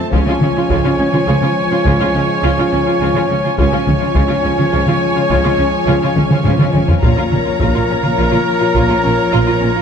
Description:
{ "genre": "cinematic, epic orchestral film score", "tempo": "70 BPM (dotted quarters)", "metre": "12/8", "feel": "straight", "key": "unclear", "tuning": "A4 = 441 Hz", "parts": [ { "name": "warm symphonic violin section", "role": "melody", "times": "0.0-9.8 s", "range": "Ab5 to Bb5", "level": "-24 LUFS", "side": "left 2 dB", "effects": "none" }, { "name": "warm studio violin section", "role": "second line", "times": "0.0-9.8 s", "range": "Db5", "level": "-23 LUFS", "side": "left 5 dB", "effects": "none" }, { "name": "clear symphonic viola section", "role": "accompaniment", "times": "0.0-9.8 s", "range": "Db4 to F4", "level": "-21 LUFS", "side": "equal", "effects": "none" }, { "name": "warm trombone section", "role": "sustained chords", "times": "0.0-9.8 s", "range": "F3 to Bb3", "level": "-21 LUFS", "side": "equal", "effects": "none" }, { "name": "rich symphonic cello section", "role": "bass", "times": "0.0-9.8 s", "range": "Bb2 to Db3", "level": "-21 LUFS", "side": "right 2 dB", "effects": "none" }, { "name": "dark French horn section", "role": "sustained chords", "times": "0.1-9.8 s", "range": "Db4 to F4", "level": "-23 LUFS", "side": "left 4 dB", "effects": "none" }, { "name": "clear trumpet", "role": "stabs", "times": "0.1-9.8 s", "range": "Bb4 to Db5", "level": "-21 LUFS", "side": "right 3 dB", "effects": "none" }, { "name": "rich symphonic double bass section", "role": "bass", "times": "0.1-9.7 s", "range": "Bb1 to Db2", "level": "-20 LUFS", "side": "right 2 dB", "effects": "none" }, { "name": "taiko ensemble", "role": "drums", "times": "0.1-9.3 s", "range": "none", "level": "-17 LUFS", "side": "equal", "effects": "none" } ], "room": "wet concert hall reverb, RT60 2.4 s", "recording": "dark, warm production", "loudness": "-12 LUFS", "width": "side -7 dB against mid", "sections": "0.0-9.8 A section", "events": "drum fill 6.2-7.0", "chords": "0.1 Db; 7.0 Bbm" }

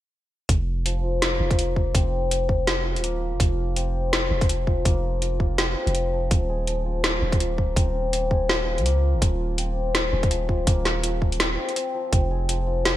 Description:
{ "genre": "half-time drum and bass", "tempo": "165 BPM", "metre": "4/4", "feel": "swing 58% on 16ths, half-time", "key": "F minor", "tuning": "A4 = 439 Hz", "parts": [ { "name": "long sustained 808-style bass", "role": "bass", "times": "0.5-13.0 s", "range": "Eb1 to Db2", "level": "-25 LUFS", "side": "equal", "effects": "none" }, { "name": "drum and bass drum kit", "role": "drums", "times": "0.5-12.9 s", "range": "hi-hat, snare drum", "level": "-24 LUFS", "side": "equal", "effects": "gated reverb" }, { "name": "electronic kick drum", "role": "drums", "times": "0.5-12.2 s", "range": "none", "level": "-22 LUFS", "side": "equal", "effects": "none" }, { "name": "santur", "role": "arpeggios", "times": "0.9-13.0 s", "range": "F3 to F4", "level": "-27 LUFS", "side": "left 3 dB", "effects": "low-pass filter, digital delay" } ], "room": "moderate lush hall reverb, RT60 1.8 s, digital ambience", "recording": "bright 1980s-style digital production", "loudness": "-21 LUFS", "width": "side -14 dB against mid", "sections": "0.5-13.0 A section", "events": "filter sweep on santur 0.5-13.0; break 11.8-12.1", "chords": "0.5 F5; 6.3 Eb5; 12.1 Fm" }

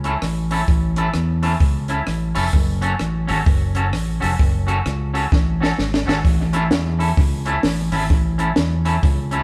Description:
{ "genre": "ska", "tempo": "129 BPM", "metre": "4/4", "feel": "swing 62% on 8ths", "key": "A major", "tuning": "A4 = 440 Hz", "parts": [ { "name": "clean electric guitar", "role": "accompaniment", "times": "0.0-9.4 s", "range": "C#4 to A4", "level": "-26 LUFS", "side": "equal", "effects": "spring reverb" }, { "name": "fingered electric bass", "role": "bass", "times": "0.0-9.4 s", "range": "F1 to E2", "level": "-23 LUFS", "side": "equal", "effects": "none" }, { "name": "compact cocktail drum kit", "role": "drums", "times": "0.0-9.4 s", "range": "hi-hat, kick drum, rim click, snare drum", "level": "-22 LUFS", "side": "equal", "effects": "none" } ], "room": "moderate stone room reverb, RT60 1.4 s", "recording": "band playing live in one room", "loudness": "-19 LUFS", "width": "mono", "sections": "0.0-9.4 A section", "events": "drum fill 5.3-6.3", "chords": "0.0 A; 2.5 F#m; 6.3 A" }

